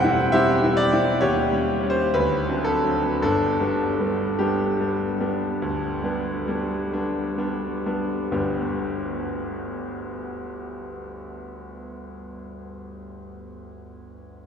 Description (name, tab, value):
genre	classical, romantic character piece for solo piano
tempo	41-70 BPM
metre	4/4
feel	rubato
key	G major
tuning	A4 = 440 Hz
part	bright grand piano	solo	0.0-14.5 s	E1 to G5	-22 LUFS	equal	none
room	wet cathedral reverb, RT60 5.6 s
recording	heard from further back in the room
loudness	-21 LUFS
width	side -7 dB against mid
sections	0.0-8.3 A section; 8.3-13.5 B section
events	slowing down 0.0-8.3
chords	0.0 C/E; 1.2 Eb7; 2.1 D7; 3.2 G